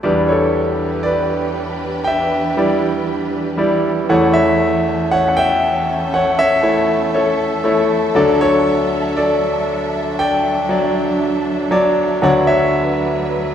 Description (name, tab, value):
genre	acoustic folk-pop ballad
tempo	59 BPM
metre	4/4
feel	straight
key	D major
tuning	A4 = 440 Hz
part	bright concert grand piano	melody	0.0-13.5 s	D2 to G5	-14 LUFS	equal	none
part	warm symphonic string section	sustained chords	0.1-13.5 s	E3 to E5	-23 LUFS	right 2 dB	none
room	wet scoring stage reverb, RT60 1.6 s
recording	recorded in a church or concert hall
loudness	-14 LUFS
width	side -9 dB against mid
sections	0.0-13.5 A section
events	none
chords	0.0 Em7; 4.1 A/E; 8.2 Dmaj7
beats	| 0.04 1.06 2.07 3.09 | 4.10 5.12 6.13 7.15 | 8.16 9.18 10.19 11.21 | 12.22 13.24